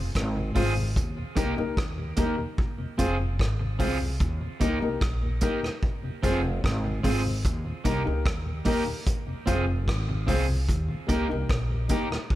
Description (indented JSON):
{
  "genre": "roots reggae",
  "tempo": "74 BPM",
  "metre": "4/4",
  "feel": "straight",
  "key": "unclear",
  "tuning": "A4 = 441 Hz",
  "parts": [
    { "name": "mellow tonewheel organ", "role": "accompaniment", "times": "0.0-12.2 s", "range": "Eb2 to F4", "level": "-36 LUFS", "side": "left 1 dB", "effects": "stopped rotary speaker" },
    { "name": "upright bass", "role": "bass", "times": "0.0-11.9 s", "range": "F1 to Eb2", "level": "-28 LUFS", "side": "equal", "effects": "none" },
    { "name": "vintage drum kit", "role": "drums", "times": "0.1-12.4 s", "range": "hi-hat, kick drum, rim click", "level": "-29 LUFS", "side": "equal", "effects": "none" },
    { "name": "electric guitar at the edge of break-up", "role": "accompaniment", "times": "0.4-12.1 s", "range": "Bb3 to Ab4", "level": "-32 LUFS", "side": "right 4 dB", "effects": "harmonic tremolo, tape echo" },
    { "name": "dark upright piano", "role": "stabs", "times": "0.6-12.1 s", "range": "Bb3 to C5", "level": "-32 LUFS", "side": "left 5 dB", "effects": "none" }
  ],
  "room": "light reverb",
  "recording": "none",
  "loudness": "-24 LUFS",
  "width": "side -15 dB against mid",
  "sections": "0.0-12.4 A section",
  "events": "none",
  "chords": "0.0 Fm; 1.0 Eb; 2.6 Fm; 4.2 Eb; 5.8 Fm; 7.4 Eb; 9.1 Fm; 10.7 Eb"
}